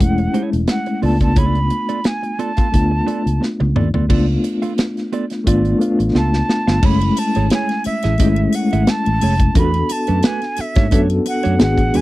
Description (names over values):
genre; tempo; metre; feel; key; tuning
lush 1970s-style soul; 88 BPM; 4/4; swing 54% on 16ths; F# minor; A4 = 440 Hz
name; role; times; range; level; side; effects
breathy jazz flute; melody; 0.0-12.0 s; E5 to B5; -23 LUFS; right 2 dB; none
mellow reed electric piano; accompaniment; 0.0-12.0 s; G#3 to A4; -19 LUFS; left 2 dB; fast tremolo
mellow electric guitar; riff; 0.0-12.0 s; G#3 to E#5; -24 LUFS; right 6 dB; none
fingered electric bass; bass; 0.0-12.0 s; E1 to G#2; -18 LUFS; equal; none
modern studio drum kit; drums; 0.0-12.0 s; crash cymbal, hi-hat, kick drum, snare drum, toms; -18 LUFS; equal; none
triangle; percussion; 6.8-12.0 s; none; -34 LUFS; left 16 dB; none
room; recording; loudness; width
little or no reverb; dry, close 1970s-style studio recording; -14 LUFS; side -17 dB against mid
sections
0.0-4.1 A section; 4.1-6.8 B section; 6.8-12.0 C section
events
drum fill 3.4-4.1, 6.1-6.8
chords
0.0 F#m9; 1.0 C#7b9b13; 6.8 F#m9 (rootless); 9.6 E9sus4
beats
0.00 0.68 | 1.37 2.05 2.73 3.42 | 4.10 4.78 5.47 6.15 | 6.83 7.51 8.19 8.87 | 9.56 10.24 10.92 11.60